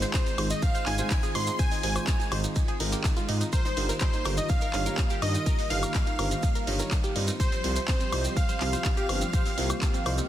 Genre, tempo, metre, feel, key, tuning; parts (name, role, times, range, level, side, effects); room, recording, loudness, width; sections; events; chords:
progressive house; 124 BPM; 4/4; straight; A4 = 438 Hz
plucky unison lead; melody; 0.0-10.3 s; C5 to C6; -34 LUFS; equal; cassette tape, sidechain pumping, digital delay
airy dreamy lead; second line; 0.0-10.3 s; C5 to C6; -38 LUFS; equal; chorus, sidechain pumping, digital delay
warm analog pad; sustained chords; 0.0-10.3 s; Eb3 to G4; -37 LUFS; right 1 dB; chorus, sidechain pumping
wide unison pluck; arpeggios; 0.0-10.3 s; C4 to C5; -37 LUFS; equal; sidechain pumping, digital delay
dark baby grand piano; stabs; 0.0-10.3 s; G3 to F5; -36 LUFS; right 2 dB; sidechain pumping, digital delay
dark detuned saw bass; bass; 0.0-10.2 s; G1 to Ab2; -30 LUFS; equal; sidechain pumping
jazz brush drum kit; drums; 0.0-10.2 s; ride cymbal, snare drum; -41 LUFS; right 2 dB
pop drum kit; drums; 0.0-10.3 s; handclaps, hi-hat, woodblock; -34 LUFS; equal; studio reverb
shekere; percussion; 0.0-10.3 s; -39 LUFS; right 2 dB
electronic kick drum; drums; 0.1-9.9 s; -27 LUFS; equal; studio reverb
small room ambience; dense, heavily limited modern master; -24 LUFS; side -12 dB against mid
0.0-10.3 A section
0.0 Ab6; 3.5 Ebadd9/G; 7.4 Csus4